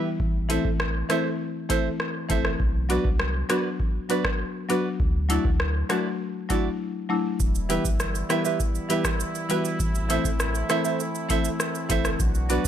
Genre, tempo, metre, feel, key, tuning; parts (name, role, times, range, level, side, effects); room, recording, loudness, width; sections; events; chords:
dancehall; 100 BPM; 4/4; straight; E minor; A4 = 440 Hz
buzzing marimba with medium mallets; accompaniment; 0.0-12.6 s; E3 to F#4; -27 LUFS; left 3 dB
nylon-string guitar; arpeggios; 0.0-12.7 s; E4 to E5; -29 LUFS; right 11 dB
warm sub bass; bass; 0.2-12.7 s; E1 to D2; -28 LUFS; equal
booming analog drum machine; drums; 0.2-12.7 s; hi-hat, kick drum, rim click, shaker; -26 LUFS; equal
mellow brass ensemble; sustained chords; 7.4-12.7 s; G3 to F#4; -34 LUFS; right 2 dB; sidechain pumping
studio ambience; -23 LUFS; side -10 dB against mid
0.0-7.4 A section; 7.4-12.7 B section
drums muted 6.8-7.4
0.2 Am; 2.6 Bm; 5.0 Dadd9; 7.4 Em; 9.8 Am